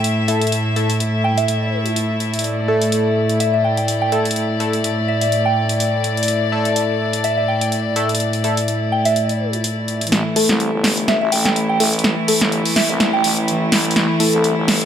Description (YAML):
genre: bass house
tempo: 125 BPM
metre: 4/4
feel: swing 55% on 16ths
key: unclear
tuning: A4 = 439 Hz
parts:
  - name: warm chamber string section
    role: sustained chords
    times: 0.0-14.9 s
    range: A2 to E5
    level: -19 LUFS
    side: left 1 dB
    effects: none
  - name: band-passed chord stab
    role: stabs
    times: 0.0-14.9 s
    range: A3 to A4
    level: -22 LUFS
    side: left 1 dB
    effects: chorus, phaser, dub echo
  - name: house drum kit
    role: drums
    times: 0.0-14.9 s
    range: hi-hat, snare drum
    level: -19 LUFS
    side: equal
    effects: none
  - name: soft synth bell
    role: melody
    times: 1.2-13.6 s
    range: E5 to G5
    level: -22 LUFS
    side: right 2 dB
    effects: chorus, phaser, dub echo
  - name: growling FM bass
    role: bass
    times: 10.1-14.9 s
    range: G1 to C2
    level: -24 LUFS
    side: equal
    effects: overdrive, high-pass filter
room: light reverb, digital ambience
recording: none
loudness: -15 LUFS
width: side -9 dB against mid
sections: 0.0-10.1 A section; 10.1-14.9 B section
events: build-up 10.1-14.9; drum fill 10.1-14.9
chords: 0.0 A5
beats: 0.04 | 0.52 1.00 1.48 1.96 | 2.44 2.92 3.40 3.88 | 4.36 4.84 5.32 5.80 | 6.28 6.76 7.24 7.72 | 8.20 8.68 9.16 9.64 | 10.12 10.60 11.08 11.56 | 12.04 12.52 13.00 13.48 | 13.96 14.44